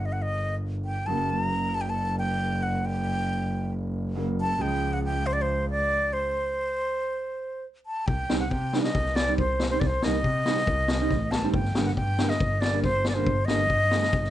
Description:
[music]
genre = klezmer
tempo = 138 BPM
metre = 4/4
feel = straight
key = unclear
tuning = A4 = 440 Hz
[part]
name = breathy concert flute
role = melody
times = 0.0-14.3 s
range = C5 to A#5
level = -27 LUFS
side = equal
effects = none
[part]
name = clear upright piano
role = accompaniment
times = 0.0-14.0 s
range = C#3 to D4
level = -31 LUFS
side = right 3 dB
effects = none
[part]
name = rich double bass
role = bass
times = 0.0-14.3 s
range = F#1 to C3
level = -29 LUFS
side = equal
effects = none
[part]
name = street-band drum kit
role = drums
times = 8.1-14.3 s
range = kick drum, snare drum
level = -28 LUFS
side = left 2 dB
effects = none
[sound]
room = light reverb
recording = nothing above 10.5 kHz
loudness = -24 LUFS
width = side -13 dB against mid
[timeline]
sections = 0.0-8.1 A section; 8.1-14.3 A section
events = stop 6.3-8.1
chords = 0.0 Gm; 1.1 F#; 4.6 Db; 6.3 N.C.; 8.1 Cm; 11.5 Gm

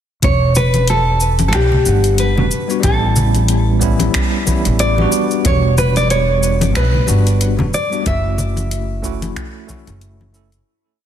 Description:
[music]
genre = sunset chillout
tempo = 92 BPM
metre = 4/4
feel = swing 57% on 16ths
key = E dorian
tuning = A4 = 440 Hz
[part]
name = nylon-string guitar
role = melody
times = 0.2-10.0 s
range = G4 to E5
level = -18 LUFS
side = equal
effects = ping-pong delay
[part]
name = upright bass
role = bass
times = 0.2-10.6 s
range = E1 to B1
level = -16 LUFS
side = equal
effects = none
[part]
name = electronic kick drum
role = drums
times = 0.2-9.8 s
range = none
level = -20 LUFS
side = equal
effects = none
[part]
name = smooth R&B drum kit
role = drums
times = 0.2-10.6 s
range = finger snaps, hi-hat, shaker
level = -23 LUFS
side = left 1 dB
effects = soft clipping on snare
[part]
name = congas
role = percussion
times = 0.2-10.3 s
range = none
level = -22 LUFS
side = left 2 dB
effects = none
[part]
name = bell-like tine electric piano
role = accompaniment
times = 1.8-10.5 s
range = G3 to F#5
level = -21 LUFS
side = moving between left 5 dB and right 3 dB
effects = slow stereo tremolo, auto-pan, digital delay
[sound]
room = light reverb, small room reverb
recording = dense, heavily limited modern master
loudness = -13 LUFS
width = side -10 dB against mid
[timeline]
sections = 0.2-10.7 groove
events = fade-out 7.2-10.7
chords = 0.2 Em7; 2.8 A7; 5.1 Em7; 8.1 F#m7

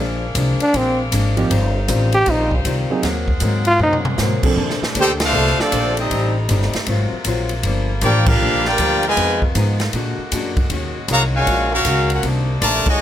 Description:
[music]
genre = jazz, big band swing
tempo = 157 BPM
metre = 4/4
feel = swing 64% on 8ths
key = unclear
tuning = A4 = 436 Hz
[part]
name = archtop guitar, miked and amplified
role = accompaniment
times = 0.0-12.9 s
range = G2 to C5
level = -26 LUFS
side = left 4 dB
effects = none
[part]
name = clear saxophone section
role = sustained chords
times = 0.0-13.0 s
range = Bb2 to Gb5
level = -28 LUFS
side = left 2 dB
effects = none
[part]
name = upright bass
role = bass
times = 0.0-13.0 s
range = G1 to Bb2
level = -20 LUFS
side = equal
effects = none
[part]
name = swinging big-band drum kit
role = drums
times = 0.3-12.9 s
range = crash cymbal, hi-hat, kick drum, ride cymbal, snare drum, toms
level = -23 LUFS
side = equal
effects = none
[part]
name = clear trombone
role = melody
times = 0.6-4.0 s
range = C4 to G4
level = -16 LUFS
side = equal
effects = none
[part]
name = warm grand piano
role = accompaniment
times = 1.4-4.6 s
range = F3 to A4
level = -22 LUFS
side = right 4 dB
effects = none
[part]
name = brilliant trumpet section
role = melody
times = 5.0-13.0 s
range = C4 to Bb5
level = -18 LUFS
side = equal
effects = none
[part]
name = mellow trombone section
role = second line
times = 5.0-13.0 s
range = A2 to G4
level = -23 LUFS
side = right 1 dB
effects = none
[sound]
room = light reverb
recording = close, detailed microphones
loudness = -15 LUFS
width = side -11 dB against mid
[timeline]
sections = 0.0-4.6 A section; 4.6-13.0 B section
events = trombone solo 0.0-4.6; drum fill 3.8-4.2; band accent 5.2, 8.2, 12.8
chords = 0.0 Bb7; 1.5 Eb69; 3.0 Ab9; 4.6 Bbmaj9; 6.1 Am7b5; 6.9 Ab13; 7.6 Gm7; 9.2 Fm7b5; 9.9 Bb7b13; 10.7 Ebm11; 12.2 Cm9

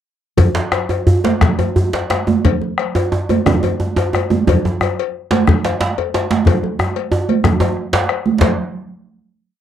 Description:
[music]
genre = west african traditional, West African drum ensemble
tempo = 116-128 BPM (dotted quarters)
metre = 12/8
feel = straight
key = none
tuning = none
[part]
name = bombo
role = percussion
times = 0.4-8.6 s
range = none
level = -19 LUFS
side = left 3 dB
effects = none
[part]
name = congas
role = percussion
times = 0.4-8.6 s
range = none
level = -19 LUFS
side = right 6 dB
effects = none
[part]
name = cowbell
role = percussion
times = 0.4-8.6 s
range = none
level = -23 LUFS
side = left 19 dB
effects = none
[part]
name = djembe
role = percussion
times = 0.4-8.6 s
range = none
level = -20 LUFS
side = left 3 dB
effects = none
[part]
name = djembe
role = percussion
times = 0.4-8.6 s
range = none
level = -17 LUFS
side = right 2 dB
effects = none
[sound]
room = light reverb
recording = dry, close 1970s-style studio recording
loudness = -14 LUFS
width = side -10 dB against mid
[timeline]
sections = 0.4-8.4 A section; 8.4-9.6 final hit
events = speeding up 0.4-9.6; drum fill 6.5-8.4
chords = none

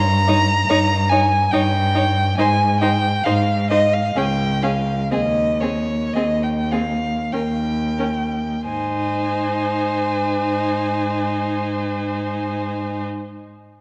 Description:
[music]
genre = classical, slow romantic movement for string quartet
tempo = 43-72 BPM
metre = 3/4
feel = rubato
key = Ab major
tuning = A4 = 438 Hz
[part]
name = rich violin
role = second line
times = 0.0-13.0 s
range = Db5 to Bb5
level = -24 LUFS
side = equal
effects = none
[part]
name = rich cello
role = bass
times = 0.0-13.0 s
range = Db2 to Ab2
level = -24 LUFS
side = equal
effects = none
[part]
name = rich violin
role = melody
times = 0.3-13.0 s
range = Ab4 to Db5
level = -30 LUFS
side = equal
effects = none
[part]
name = rich viola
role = accompaniment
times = 0.3-13.0 s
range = C4 to Eb4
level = -28 LUFS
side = equal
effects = none
[sound]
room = wet concert hall reverb, RT60 1.9 s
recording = worn, warbling old tape, cassette tape, warbly pitch drift, nothing above 10.7 kHz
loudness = -20 LUFS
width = mono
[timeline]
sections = 0.0-8.7 A section; 8.7-12.7 B section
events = slowing down 1.1-8.7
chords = 0.0 Eb/G; 2.4 Ab5; 4.2 Db; 5.1 Ab/Eb (rootless); 7.3 Eb; 8.7 Ab

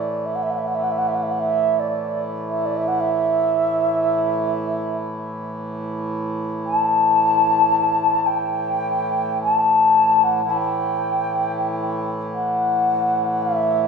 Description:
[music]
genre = world meditative, free-time meditation music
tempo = free time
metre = none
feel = none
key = unclear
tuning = A4 = 440 Hz
[part]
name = wooden-headed alto flute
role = melody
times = 0.0-13.9 s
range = D5 to A5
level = -18 LUFS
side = left 1 dB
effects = none
[part]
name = hand-pumped harmonium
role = drone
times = 0.0-13.9 s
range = A2 to E3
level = -26 LUFS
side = right 1 dB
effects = none
[sound]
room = wet scoring stage reverb, RT60 1.7 s, small room reverb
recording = dark, warm production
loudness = -18 LUFS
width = side -5 dB against mid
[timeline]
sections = 0.0-13.9 A section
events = none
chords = none

